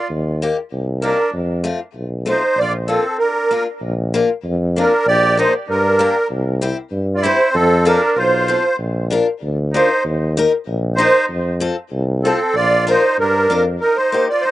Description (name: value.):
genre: alpine folk, alpine dance band.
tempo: 96 BPM.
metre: 2/4.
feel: straight.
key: Bb major.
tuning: A4 = 440 Hz.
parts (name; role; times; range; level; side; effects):
musette accordion; melody; 0.0-14.5 s; A4 to D5; -16 LUFS; right 1 dB; slapback echo.
clear trumpet; second line; 0.0-14.5 s; C4 to G4; -23 LUFS; right 2 dB; slapback echo.
warm tuba; bass; 0.1-13.8 s; Bb1 to G2; -20 LUFS; equal; none.
picked old ladder-braced acoustic guitar; accompaniment; 0.4-14.3 s; A3 to Bb4; -20 LUFS; left 4 dB; none.
room: little or no reverb.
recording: recorded outdoors, with no room sound, nothing above 10.9 kHz.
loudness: -14 LUFS.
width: side -15 dB against mid.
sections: 0.0-3.8 A section; 3.8-13.8 A section.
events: none.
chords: 0.1 Eb; 1.3 F; 2.6 Bb; 5.1 Gm/Bb; 6.3 C; 7.6 F; 8.8 Bb; 10.1 Eb; 11.3 F; 12.5 Bb; 13.8 Eb.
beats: | 0.11 0.72 | 1.34 1.96 | 2.58 3.20 | 3.83 4.45 | 5.08 5.70 | 6.31 6.93 | 7.55 8.17 | 8.80 9.43 | 10.05 10.67 | 11.30 11.92 | 12.55 13.18 | 13.81 14.43.